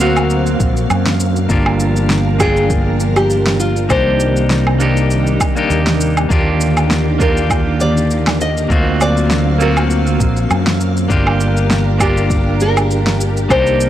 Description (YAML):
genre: sunset chillout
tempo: 100 BPM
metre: 4/4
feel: swing 54% on 16ths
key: unclear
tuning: A4 = 440 Hz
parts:
  - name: nylon-string guitar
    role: melody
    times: 0.0-13.9 s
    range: F4 to Eb5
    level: -19 LUFS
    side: equal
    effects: analog delay
  - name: clean electric guitar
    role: accompaniment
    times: 0.0-13.9 s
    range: A#3 to G5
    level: -19 LUFS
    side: equal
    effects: auto-pan, analog delay
  - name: soft string machine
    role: sustained chords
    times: 0.0-13.9 s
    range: C3 to E#5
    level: -21 LUFS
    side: equal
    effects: ensemble chorus
  - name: fretless electric bass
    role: bass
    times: 0.0-13.9 s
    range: G1 to F#2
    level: -16 LUFS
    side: equal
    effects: none
  - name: electronic shaker, woodblock and snare drum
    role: drums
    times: 0.0-13.9 s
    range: none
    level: -19 LUFS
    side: right 1 dB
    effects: none
  - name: electronic kick drum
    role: drums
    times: 0.6-13.6 s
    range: none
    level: -18 LUFS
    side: equal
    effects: none
room: little or no reverb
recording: dry, gritty hardware recording, transformer saturation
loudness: -12 LUFS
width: side -12 dB against mid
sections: 0.0-13.9 A section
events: none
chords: 0.0 D7alt; 1.5 Gm7; 3.9 Cm7; 6.3 Ebmaj7; 8.7 D7alt; 11.1 Gm7